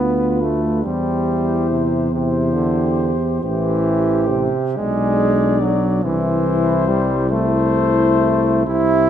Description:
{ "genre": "classical, hymn-like piece for brass band", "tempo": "46 BPM (dotted quarters)", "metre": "6/8", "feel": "uneven beats, rubato", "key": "unclear", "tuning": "A4 = 440 Hz", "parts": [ { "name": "mellow flugelhorn", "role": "melody", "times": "0.0-9.1 s", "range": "B4 to D5", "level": "-24 LUFS", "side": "left 9 dB", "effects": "none" }, { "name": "warm French horn section", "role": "second line", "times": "0.0-9.1 s", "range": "E4 to G#4", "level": "-26 LUFS", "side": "right 5 dB", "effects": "none" }, { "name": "clear trombone", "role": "accompaniment", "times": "0.0-9.1 s", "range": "C3 to E4", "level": "-20 LUFS", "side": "right 2 dB", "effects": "none" }, { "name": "mellow euphonium", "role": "accompaniment", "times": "0.0-9.1 s", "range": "D4 to F4", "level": "-25 LUFS", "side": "left 4 dB", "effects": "none" }, { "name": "mellow tuba", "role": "bass", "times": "0.0-9.1 s", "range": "A1 to E2", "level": "-20 LUFS", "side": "equal", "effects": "none" } ], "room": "moderate scoring stage reverb, RT60 1.7 s", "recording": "dark, warm production", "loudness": "-15 LUFS", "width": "side -10 dB against mid", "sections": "0.0-9.1 A section", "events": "none", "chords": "0.0 Bdim/D; 0.9 C/E; 3.4 Am7; 4.8 G#dim/B; 6.0 Am/C" }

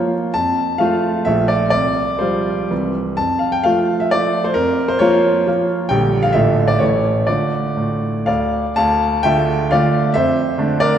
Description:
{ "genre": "classical, romantic triple-time dance for piano with dotted rhythms", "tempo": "115-144 BPM", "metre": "3/4", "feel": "rubato", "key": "F major, D minor from 5.9 s", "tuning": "A4 = 441 Hz", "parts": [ { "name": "clear grand piano", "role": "solo", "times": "0.0-11.0 s", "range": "A1 to A5", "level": "-14 LUFS", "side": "equal", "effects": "none" } ], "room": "wet concert hall reverb, RT60 2.5 s", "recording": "none", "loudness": "-15 LUFS", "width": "side -9 dB against mid", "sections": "0.0-8.8 A section; 8.8-11.0 B section", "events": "none", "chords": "0.3 F; 1.3 Bbmaj7; 1.7 Csus4; 2.7 C; 3.2 F; 4.6 Bbm/F; 5.9 Gm/Bb; 6.3 Dm/A; 6.8 A; 7.3 Dm; 10.1 Dm/F" }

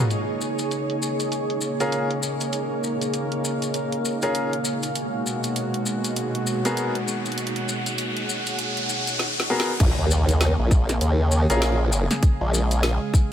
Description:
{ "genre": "glitch hop", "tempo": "99 BPM", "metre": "4/4", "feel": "swing 60% on 16ths", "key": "Bb phrygian", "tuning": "A4 = 441 Hz", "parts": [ { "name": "warm analog pad", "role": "sustained chords", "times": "0.0-13.3 s", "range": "Cb3 to Bb4", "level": "-29 LUFS", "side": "right 1 dB", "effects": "chorus, sidechain pumping" }, { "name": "granular cloud pad", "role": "texture", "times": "0.0-13.3 s", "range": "Bb3 to Gb5", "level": "-29 LUFS", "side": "equal", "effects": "built-in reverb, sidechain pumping" }, { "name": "drum and bass drum kit", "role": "drums", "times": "0.1-13.0 s", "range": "crash cymbal, hi-hat, snare drum", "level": "-28 LUFS", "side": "equal", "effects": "low-pass filter on hats, low-pass filter on snare, low-pass filter on toms, low-pass filter on cymbals, low-pass filter on room" }, { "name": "maracas", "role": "percussion", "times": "0.1-13.3 s", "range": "none", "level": "-32 LUFS", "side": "left 3 dB", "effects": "none" }, { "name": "bright grand piano", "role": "stabs", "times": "1.8-11.8 s", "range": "Cb4 to Bb4", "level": "-28 LUFS", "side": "left 1 dB", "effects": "sidechain pumping, ping-pong delay" }, { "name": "riser and impact", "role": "sound effects", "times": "6.3-12.2 s", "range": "none", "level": "-30 LUFS", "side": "equal", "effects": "none" }, { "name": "formant-sweep wobble bass", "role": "bass", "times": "9.8-13.0 s", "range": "Bb1 to Eb2", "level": "-20 LUFS", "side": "equal", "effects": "chorus" }, { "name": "electronic kick drum", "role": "drums", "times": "9.8-13.3 s", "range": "none", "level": "-17 LUFS", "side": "equal", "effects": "none" } ], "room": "light reverb", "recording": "none", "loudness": "-21 LUFS", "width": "side -10 dB against mid", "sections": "0.1-9.8 A section; 9.8-13.3 B section", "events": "filter sweep on drum 0.1-9.8; riser 6.3-9.8; drum fill 9.2-9.8; drop 9.8-13.3; impact 9.8-12.2", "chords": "0.1 Bbm7; 5.0 Abm9; 9.8 Bbm7" }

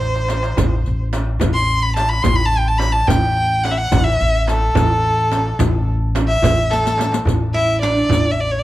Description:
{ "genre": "Arabic maqam ensemble", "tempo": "72 BPM (dotted quarters)", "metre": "6/8", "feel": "straight", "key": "A minor", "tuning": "A4 = 440 Hz", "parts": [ { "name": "rich violin", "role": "melody", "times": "0.0-8.6 s", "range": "A4 to C6", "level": "-19 LUFS", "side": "equal", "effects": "plate reverb" }, { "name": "upright bass", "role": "bass", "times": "0.0-8.6 s", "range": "A1", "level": "-19 LUFS", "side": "equal", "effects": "none" }, { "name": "darbuka", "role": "percussion", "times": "0.0-8.2 s", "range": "none", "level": "-23 LUFS", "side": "left 1 dB", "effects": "none" }, { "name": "frame drum", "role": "percussion", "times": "0.3-8.2 s", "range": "none", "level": "-23 LUFS", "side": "right 5 dB", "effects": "none" }, { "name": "riq", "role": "percussion", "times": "0.3-8.2 s", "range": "none", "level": "-26 LUFS", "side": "left 5 dB", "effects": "none" }, { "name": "oud", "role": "second line", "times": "7.5-8.3 s", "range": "D4 to E4", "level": "-22 LUFS", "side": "right 2 dB", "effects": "none" } ], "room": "moderate studio reverb, RT60 0.5 s", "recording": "dark, warm production", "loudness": "-14 LUFS", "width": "side -15 dB against mid", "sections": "0.0-7.3 A section; 7.3-8.6 B section", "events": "drum fill 0.0-0.6, 6.7-7.3", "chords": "none" }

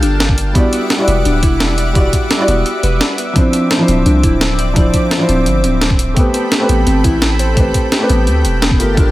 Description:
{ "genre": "liquid drum and bass", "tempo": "171 BPM", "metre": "4/4", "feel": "straight", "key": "unclear", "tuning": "A4 = 440 Hz", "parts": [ { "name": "felt-muted upright piano", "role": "accompaniment", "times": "0.0-9.1 s", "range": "F3 to D5", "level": "-17 LUFS", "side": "equal", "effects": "tape echo" }, { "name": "lush unison pad", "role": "sustained chords", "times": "0.0-9.1 s", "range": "G3 to D6", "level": "-22 LUFS", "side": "equal", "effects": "chorus" }, { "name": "harp-like synth pluck", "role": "arpeggios", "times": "0.0-9.1 s", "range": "B3 to D5", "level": "-19 LUFS", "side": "equal", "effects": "chorus, dub echo" }, { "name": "long sustained 808-style bass", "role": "bass", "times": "0.0-9.1 s", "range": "D1 to D2", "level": "-15 LUFS", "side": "equal", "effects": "none" }, { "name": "breakbeat sampler-style drum kit", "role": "drums", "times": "0.0-9.0 s", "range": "hi-hat, snare drum", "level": "-18 LUFS", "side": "equal", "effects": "none" }, { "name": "electronic kick drum", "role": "drums", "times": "0.3-9.0 s", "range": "none", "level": "-13 LUFS", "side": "equal", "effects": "none" } ], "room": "little or no reverb", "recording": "none", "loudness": "-11 LUFS", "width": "side -16 dB against mid", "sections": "0.0-9.1 A section", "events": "none", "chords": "0.0 Gm9; 0.6 Em9; 3.4 Dm9; 6.2 Am9" }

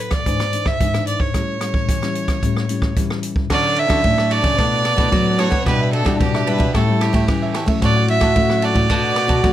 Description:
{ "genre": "samba and choro", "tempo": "111 BPM", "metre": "4/4", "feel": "straight", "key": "D major", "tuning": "A4 = 440 Hz", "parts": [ { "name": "rich fiddle", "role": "melody", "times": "0.0-9.5 s", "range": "G4 to E5", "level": "-20 LUFS", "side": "right 3 dB", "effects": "none" }, { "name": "nylon-string guitar", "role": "accompaniment", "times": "0.0-9.5 s", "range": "G#2 to A4", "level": "-24 LUFS", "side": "left 3 dB", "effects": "none" }, { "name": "open jazz drum kit", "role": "drums", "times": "0.1-9.5 s", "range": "crash cymbal, hi-hat, kick drum, ride cymbal, rim click", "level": "-20 LUFS", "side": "equal", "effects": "none" }, { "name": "mellow trombone", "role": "second line", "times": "3.5-9.5 s", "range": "B3 to F#4", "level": "-25 LUFS", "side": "left 3 dB", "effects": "none" }, { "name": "cavaquinho", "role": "accompaniment", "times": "3.5-9.4 s", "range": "D4 to F#5", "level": "-28 LUFS", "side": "right 4 dB", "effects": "none" }, { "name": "nylon-string guitar", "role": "bass", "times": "3.5-9.5 s", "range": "A2 to B3", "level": "-20 LUFS", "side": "equal", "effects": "none" } ], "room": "little or no reverb", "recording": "close, detailed microphones", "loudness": "-15 LUFS", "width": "side -12 dB against mid", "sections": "0.0-3.5 A section; 3.5-9.5 B section", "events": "none", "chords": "0.3 E7/G#; 1.3 A7; 3.5 Dmaj9; 4.6 Bm7; 5.7 Em7/B; 6.7 A7; 7.8 Dmaj9/A; 8.9 Bm7" }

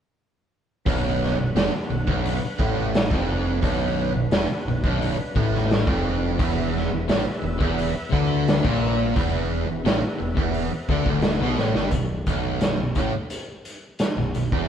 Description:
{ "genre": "classic rock", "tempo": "87 BPM", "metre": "4/4", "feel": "straight", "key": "B minor", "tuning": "A4 = 436 Hz", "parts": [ { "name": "tonewheel organ", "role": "sustained chords", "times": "0.9-11.9 s", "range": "D4 to F#5", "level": "-36 LUFS", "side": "equal", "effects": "slow rotary speaker, overdrive, chorus vibrato" }, { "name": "distorted electric guitar", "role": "riff", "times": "0.9-14.7 s", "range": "B1 to D3", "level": "-26 LUFS", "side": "right 6 dB", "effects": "overdrive" }, { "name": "sludgy distorted guitar", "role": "riff", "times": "0.9-14.7 s", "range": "B1 to D3", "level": "-27 LUFS", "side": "left 6 dB", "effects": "overdrive" }, { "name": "growling picked electric bass", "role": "bass", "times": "0.9-14.7 s", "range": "B0 to D2", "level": "-28 LUFS", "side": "equal", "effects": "overdrive" }, { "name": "raw garage drum kit", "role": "drums", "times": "0.9-14.7 s", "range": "hi-hat, kick drum, snare drum", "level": "-25 LUFS", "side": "equal", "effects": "none" } ], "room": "moderate stone room reverb, RT60 1.3 s", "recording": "band playing live in one room", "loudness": "-20 LUFS", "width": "side -8 dB against mid", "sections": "0.9-11.9 A section; 11.9-14.7 B section", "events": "drum fill 11.6-11.9", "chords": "0.9 Bm; 6.4 E5; 11.9 B7sus4" }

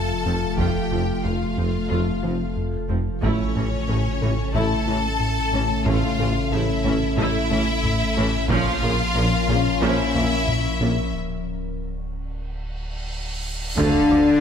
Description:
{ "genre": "cinematic, hybrid orchestral and electronic film score", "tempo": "91 BPM", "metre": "4/4", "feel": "straight", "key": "unclear", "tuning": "A4 = 440 Hz", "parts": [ { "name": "rich symphonic violin section", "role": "melody", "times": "0.0-14.4 s", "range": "C#5 to A5", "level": "-29 LUFS", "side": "left 4 dB", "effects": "none" }, { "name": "bright symphonic violin section", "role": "second line", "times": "0.0-14.4 s", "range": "C#4 to A5", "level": "-30 LUFS", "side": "left 1 dB", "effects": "none" }, { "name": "glassy FM pad", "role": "sustained chords", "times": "0.0-14.4 s", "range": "C#3 to Bb4", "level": "-29 LUFS", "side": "left 3 dB", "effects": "ensemble chorus, built-in reverb" }, { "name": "mellow French horn section", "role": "sustained chords", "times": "0.0-14.4 s", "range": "A3 to F4", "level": "-26 LUFS", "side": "left 3 dB", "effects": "none" }, { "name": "rubbery square bass", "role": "riff", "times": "0.0-14.3 s", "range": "D2 to Bb3", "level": "-27 LUFS", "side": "left 2 dB", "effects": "none" }, { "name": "sub bass with octave", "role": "bass", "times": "0.0-14.4 s", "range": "D1 to Bb1", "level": "-29 LUFS", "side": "right 1 dB", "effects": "none" }, { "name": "mellow tuba", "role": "bass", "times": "0.2-14.2 s", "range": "F1 to D2", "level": "-32 LUFS", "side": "right 4 dB", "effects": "none" }, { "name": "rich studio viola section", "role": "accompaniment", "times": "0.3-14.4 s", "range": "C3 to A4", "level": "-30 LUFS", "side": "right 2 dB", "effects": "none" }, { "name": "resonant blip pluck", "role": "arpeggios", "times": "0.3-14.3 s", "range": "D3 to Bb4", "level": "-34 LUFS", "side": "left 1 dB", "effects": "none" }, { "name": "rich symphonic cello section", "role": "bass", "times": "0.3-14.4 s", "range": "F2 to D3", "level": "-31 LUFS", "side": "right 4 dB", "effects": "none" }, { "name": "rich symphonic double bass section", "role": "bass", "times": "0.3-14.2 s", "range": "F1 to D2", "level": "-32 LUFS", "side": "right 5 dB", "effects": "none" }, { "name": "taiko ensemble", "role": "drums", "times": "0.6-14.4 s", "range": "none", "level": "-31 LUFS", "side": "right 1 dB", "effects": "none" }, { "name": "cymbal swell and impact", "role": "sound effects", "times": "12.7-14.4 s", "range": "none", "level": "-31 LUFS", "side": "right 1 dB", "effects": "none" } ], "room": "light reverb", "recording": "none", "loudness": "-19 LUFS", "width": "side -7 dB against mid", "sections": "0.0-13.8 A section", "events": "break 11.1-13.8; cymbal swell 12.7-13.8; impact 13.8-14.4", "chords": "0.0 F; 3.2 A; 8.5 Bbm; 11.1 N.C.; 13.8 Dm" }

